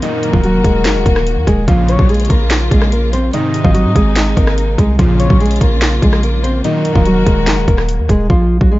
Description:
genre	hip hop, trap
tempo	145 BPM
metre	4/4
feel	half-time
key	unclear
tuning	A4 = 440 Hz
part	nylon-string guitar	melody	0.0-8.8 s	F3 to Eb5	-17 LUFS	right 1 dB	low-pass filter, tape echo
part	gliding portamento lead	second line	0.0-8.3 s	Bb4 to Eb5	-22 LUFS	left 4 dB	chorus, tape echo
part	dark studio string section	sustained chords	0.0-8.3 s	C3 to Gb4	-23 LUFS	left 1 dB	none
part	big bright polysynth	stabs	0.0-7.0 s	F2 to Eb3	-22 LUFS	equal	tape echo
part	trap drum kit	drums	0.0-8.7 s	handclaps, hi-hat, kick drum, rim click, snare drum	-14 LUFS	equal	none
part	warm 808-style bass	bass	0.3-8.8 s	Eb1 to Ab2	-15 LUFS	equal	none
room	little or no reverb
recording	echo-heavy mix, nothing above 7.6 kHz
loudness	-10 LUFS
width	side -17 dB against mid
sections	0.0-8.3 A section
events	hi-hats muted 8.3-8.8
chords	0.0 Ebm; 1.7 Bbm; 3.3 Ab; 5.0 Bbm; 6.6 Ebm

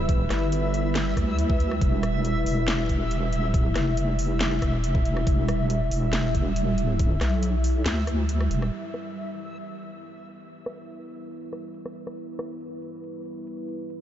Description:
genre	deep dubstep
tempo	139 BPM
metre	4/4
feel	half-time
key	E minor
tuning	A4 = 439 Hz
part	deep dark ambient pad	sustained chords	0.0-14.0 s	G3 to E5	-30 LUFS	equal	chorus, built-in reverb
part	deep soft wobble bass	bass	0.0-8.7 s	E1 to D2	-25 LUFS	equal	chorus
part	backwards swelling texture	texture	0.0-8.7 s	E5	-35 LUFS	equal	built-in reverb
part	electronic kick drum	drums	0.1-7.1 s	none	-24 LUFS	equal	none
part	garage drum kit	drums	0.1-14.0 s	hi-hat, rim click, snare drum	-33 LUFS	equal	low-pass filter on hats, low-pass filter on snare
room	light reverb, digital ambience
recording	nothing above 7.7 kHz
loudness	-22 LUFS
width	side -11 dB against mid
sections	0.0-8.7 A section; 8.7-14.0 B section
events	kick drops out 7.9-8.7; filter sweep on ambient pad 8.7-14.0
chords	0.0 Em

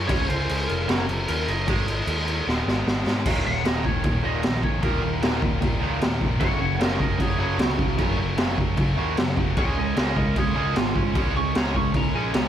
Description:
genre	punk rock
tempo	152 BPM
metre	4/4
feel	straight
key	unclear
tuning	A4 = 438 Hz
part	tight distorted guitar	riff	0.0-12.5 s	Eb2 to Db4	-30 LUFS	equal	distortion
part	picked electric bass	bass	0.0-12.5 s	Eb1 to Ab2	-28 LUFS	equal	none
part	lightly driven lead guitar	melody	0.1-12.5 s	F4 to Db6	-30 LUFS	right 1 dB	none
part	distorted electric guitar	riff	0.1-12.5 s	Eb2 to Db4	-27 LUFS	right 2 dB	overdrive
part	raw garage drum kit	drums	0.1-12.4 s	crash cymbal, kick drum, snare drum	-24 LUFS	equal	none
room	little or no reverb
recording	none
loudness	-21 LUFS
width	side -10 dB against mid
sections	0.0-3.3 A section; 3.3-12.5 B section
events	half time 0.0-3.3; drum fill 2.5-3.3; lead electric guitar solo 3.3-12.5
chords	0.1 Db; 0.9 Gb5; 1.7 Ab5; 3.3 Eb5; 6.4 Gb5; 9.6 Db5

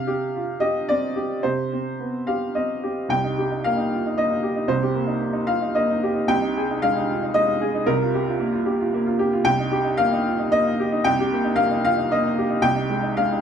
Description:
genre	neoclassical minimalist piano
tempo	113 BPM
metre	3/4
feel	rubato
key	C harmonic minor, C minor from 3.1 s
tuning	A4 = 440 Hz
part	warm upright piano	solo	0.0-13.4 s	C2 to G5	-20 LUFS	equal	none
room	moderate studio reverb, RT60 0.6 s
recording	dark, warm production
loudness	-20 LUFS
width	side -8 dB against mid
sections	0.0-3.1 A section; 3.1-13.4 B section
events	none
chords	0.0 Cm; 3.1 Cm7; 6.3 Abmaj7/C; 7.9 Gm7/C; 9.4 Cm7; 12.6 Abmaj7/C

